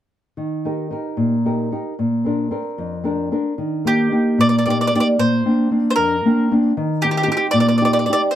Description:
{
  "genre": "italian folk, Italian serenade",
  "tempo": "75 BPM (dotted quarters)",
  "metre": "6/8",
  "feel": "straight",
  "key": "Eb major",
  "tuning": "A4 = 439 Hz",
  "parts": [
    { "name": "nylon-string guitar", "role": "accompaniment", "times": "0.4-8.3 s", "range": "F2 to Bb4", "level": "-18 LUFS", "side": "equal", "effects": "none" },
    { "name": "bowl-back mandolin", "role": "melody", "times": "3.9-8.4 s", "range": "G4 to D5", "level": "-19 LUFS", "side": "equal", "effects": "none" }
  ],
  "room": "wet small room reverb, RT60 0.5 s",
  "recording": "dark, warm production",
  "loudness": "-16 LUFS",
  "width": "side -11 dB against mid",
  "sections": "0.4-3.6 A section; 3.6-8.4 B section",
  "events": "none",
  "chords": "0.4 Eb; 2.0 Bbadd9; 3.6 Eb; 5.2 Bbadd9; 6.8 Eb6",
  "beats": "| 0.38 1.18 | 1.98 2.78 | 3.58 4.38 | 5.18 5.97 | 6.76 7.55 | 8.34"
}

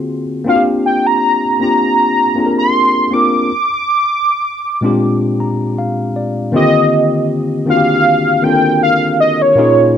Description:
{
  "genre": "R&B",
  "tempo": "79 BPM",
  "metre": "4/4",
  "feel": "swing 54% on 16ths",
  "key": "Eb major",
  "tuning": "A4 = 440 Hz",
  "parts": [
    { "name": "warm velvety synth lead", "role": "melody", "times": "0.0-10.0 s", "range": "Db5 to D6", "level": "-13 LUFS", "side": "right 1 dB", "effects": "chorus" },
    { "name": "tine electric piano", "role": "accompaniment", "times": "0.0-10.0 s", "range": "Bb2 to Bb5", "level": "-14 LUFS", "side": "left 2 dB", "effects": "none" }
  ],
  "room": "light reverb",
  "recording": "none",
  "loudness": "-11 LUFS",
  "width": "side -9 dB against mid",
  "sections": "0.0-6.5 A section; 6.5-10.0 B section",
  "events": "tine electric piano fill 5.0-6.5",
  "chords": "0.5 Bb9; 6.5 Ebmaj7",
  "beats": "| 0.46 1.22 1.98 2.73 | 3.49 4.25 5.01 5.77 | 6.53 7.29 8.05 8.81 | 9.57"
}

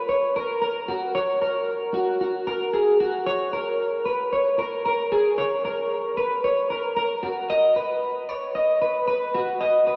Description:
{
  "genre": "indie pop",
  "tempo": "114 BPM",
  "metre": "4/4",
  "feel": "straight",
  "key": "F# major",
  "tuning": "A4 = 441 Hz",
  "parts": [
    { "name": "electric guitar through a small old amp", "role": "solo", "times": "0.0-10.0 s", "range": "F#4 to D#5", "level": "-24 LUFS", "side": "equal", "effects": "analog chorus" }
  ],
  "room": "wet lush hall reverb, RT60 3.1 s",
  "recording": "dreamy mix soaked in reverb",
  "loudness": "-24 LUFS",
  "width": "mono",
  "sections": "0.0-3.3 A section; 3.3-10.0 B section",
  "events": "none",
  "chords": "none",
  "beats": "0.09 0.62 | 1.15 1.68 2.21 2.74 | 3.27 3.79 4.32 4.85 | 5.38 5.91 6.43 6.96 | 7.49 8.02 8.55 9.07 | 9.60"
}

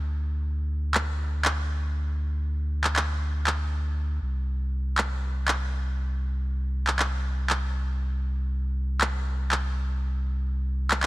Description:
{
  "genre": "afro house",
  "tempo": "119 BPM",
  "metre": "4/4",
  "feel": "straight",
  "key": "unclear",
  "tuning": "A4 = 440 Hz",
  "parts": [
    { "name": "warm sub bass", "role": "bass", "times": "0.0-11.1 s", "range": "C2 to D2", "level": "-26 LUFS", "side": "equal", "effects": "none" },
    { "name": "electronic handclaps", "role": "drums", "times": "0.9-11.1 s", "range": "none", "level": "-27 LUFS", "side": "equal", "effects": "none" }
  ],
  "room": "digital ambience",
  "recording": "none",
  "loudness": "-25 LUFS",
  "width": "side -19 dB against mid",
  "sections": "0.0-11.1 A section",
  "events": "none",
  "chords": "none",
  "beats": "| 0.19 0.69 1.20 1.70 | 2.21 2.71 3.21 3.72 | 4.22 4.73 5.23 5.73 | 6.24 6.74 7.25 7.75 | 8.26 8.76 9.26 9.77 | 10.27 10.78"
}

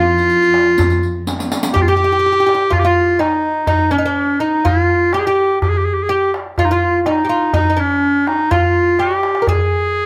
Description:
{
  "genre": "Arabic maqam ensemble",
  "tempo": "124 BPM",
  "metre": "4/4",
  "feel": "straight",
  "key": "unclear",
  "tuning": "A4 = 439 Hz",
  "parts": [
    { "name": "bright clarinet", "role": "melody", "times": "0.0-10.1 s", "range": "Db4+48c to Ab4", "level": "-17 LUFS", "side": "equal", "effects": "plate reverb" },
    { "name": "oud", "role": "second line", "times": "0.0-10.1 s", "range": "D4-50c to Bb4", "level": "-22 LUFS", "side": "equal", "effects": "none" },
    { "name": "warm cello", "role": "drone", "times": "0.0-1.8 s", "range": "F2", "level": "-30 LUFS", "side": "equal", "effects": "none" },
    { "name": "darbuka", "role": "percussion", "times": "0.2-10.0 s", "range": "none", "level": "-22 LUFS", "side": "equal", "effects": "none" },
    { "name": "riq", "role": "percussion", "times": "0.2-1.7 s", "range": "none", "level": "-25 LUFS", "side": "equal", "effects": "none" }
  ],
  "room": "moderate studio reverb, RT60 0.6 s",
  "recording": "none",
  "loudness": "-15 LUFS",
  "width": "mono",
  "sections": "0.0-1.8 A section; 1.8-10.1 B section",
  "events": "drum fill 1.3-1.8, 9.0-9.5",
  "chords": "none",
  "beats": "0.30 0.79 1.27 | 1.75 2.23 2.72 3.20 | 3.68 4.17 4.65 5.13 | 5.62 6.10 6.58 7.07 | 7.55 8.03 8.52 9.00 | 9.48 9.97"
}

